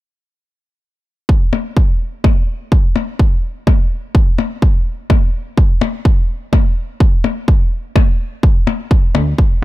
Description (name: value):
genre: melodic techno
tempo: 126 BPM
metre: 4/4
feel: straight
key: unclear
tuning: A4 = 440 Hz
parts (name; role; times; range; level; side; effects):
- electronic kick drum; drums; 1.3-9.5 s; none; -12 LUFS; equal; none
- percussion blips; drums; 1.5-9.2 s; none; -20 LUFS; left 7 dB; none
- plucky analog bass; bass; 9.1-9.3 s; D2; -15 LUFS; equal; sidechain pumping
room: little or no reverb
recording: none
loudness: -13 LUFS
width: side -17 dB against mid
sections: 1.3-9.6 A section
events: none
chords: none